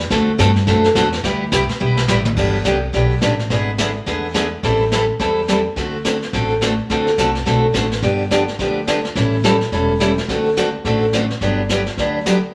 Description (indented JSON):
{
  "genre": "country, western swing",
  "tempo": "212 BPM",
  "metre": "4/4",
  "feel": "swing 61% on 8ths",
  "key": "G major",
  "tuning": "A4 = 442 Hz",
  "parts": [
    { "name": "upright bass", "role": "bass", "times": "0.0-12.4 s", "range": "E1 to G2", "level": "-24 LUFS", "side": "equal", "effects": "none" },
    { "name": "picked steel-string acoustic guitar", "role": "accompaniment", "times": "0.1-12.4 s", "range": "D3 to A4", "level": "-20 LUFS", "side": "equal", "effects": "none" },
    { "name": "jazz brush drum kit", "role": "drums", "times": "0.1-12.5 s", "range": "brushed snare drum, crash cymbal, hi-hat, kick drum, snare drum, toms", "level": "-26 LUFS", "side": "equal", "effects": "none" }
  ],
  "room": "wet studio reverb, RT60 0.8 s",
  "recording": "none",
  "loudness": "-18 LUFS",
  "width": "mono",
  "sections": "0.0-2.4 A section; 2.4-12.5 B section",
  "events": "drum fill 1.8-2.4",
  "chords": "0.1 D7; 1.2 G69; 2.4 Gmaj7; 3.5 E7/G#; 4.6 Am7; 5.8 D7; 8.0 G7; 9.2 A7; 10.3 D7; 11.4 Gmaj7"
}